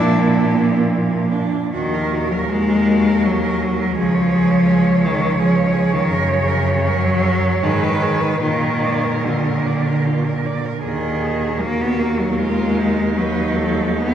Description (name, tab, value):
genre	classical, lyrical piece for cello ensemble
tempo	67-86 BPM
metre	3/4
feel	rubato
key	Eb minor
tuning	A4 = 441 Hz
part	rich cello	melody	0.0-14.1 s	D4 to Db5	-27 LUFS	left 2 dB	none
part	clear cello	second line	0.0-14.1 s	Bb3 to D5	-24 LUFS	right 5 dB	none
part	rich cello	accompaniment	0.0-14.1 s	Db3 to Cb4	-18 LUFS	equal	none
part	clear cello	bass	0.0-14.1 s	Db2 to Bb2	-22 LUFS	right 2 dB	none
room	wet cathedral reverb, RT60 6.5 s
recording	recorded in a church or concert hall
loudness	-15 LUFS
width	side -9 dB against mid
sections	0.0-1.7 A section; 1.7-14.1 B section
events	none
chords	0.0 Bb; 1.7 Ebm; 4.0 Db; 6.1 Gb; 7.6 Abm; 8.4 Bb; 10.8 Ebm; 13.2 Ebdim